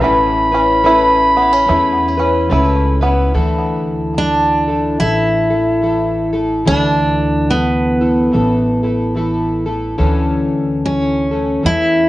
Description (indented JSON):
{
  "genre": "acoustic folk duo or small band",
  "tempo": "72 BPM",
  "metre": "4/4",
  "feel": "swing 61% on 8ths",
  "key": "unclear",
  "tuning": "A4 = 439 Hz",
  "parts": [
    { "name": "clear clarinet", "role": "second line", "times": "0.0-3.0 s", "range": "B5", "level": "-14 LUFS", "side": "equal", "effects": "none" },
    { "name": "fingerpicked plugged-in twelve-string acoustic guitar", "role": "accompaniment", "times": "0.0-12.1 s", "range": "D3 to B4", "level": "-18 LUFS", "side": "left 2 dB", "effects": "none" },
    { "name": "bluegrass banjo", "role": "arpeggios", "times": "0.0-3.5 s", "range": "E3 to E4", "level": "-20 LUFS", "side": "right 2 dB", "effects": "tape echo" },
    { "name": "upright bass", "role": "bass", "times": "0.0-12.1 s", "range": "A1 to E2", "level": "-20 LUFS", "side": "equal", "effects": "none" },
    { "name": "picked steel-string acoustic guitar", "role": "melody", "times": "4.2-12.1 s", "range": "B3 to E4", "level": "-15 LUFS", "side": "equal", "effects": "none" }
  ],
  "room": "light reverb",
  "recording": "worn, warbling old tape, cassette tape, warbly pitch drift, nothing above 10.6 kHz",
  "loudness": "-12 LUFS",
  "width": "side -16 dB against mid",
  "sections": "0.0-3.4 A section; 3.4-12.1 B section",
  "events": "clarinet solo 0.0-3.4",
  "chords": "0.0 Aadd9; 3.4 Dsus2; 10.0 A/D"
}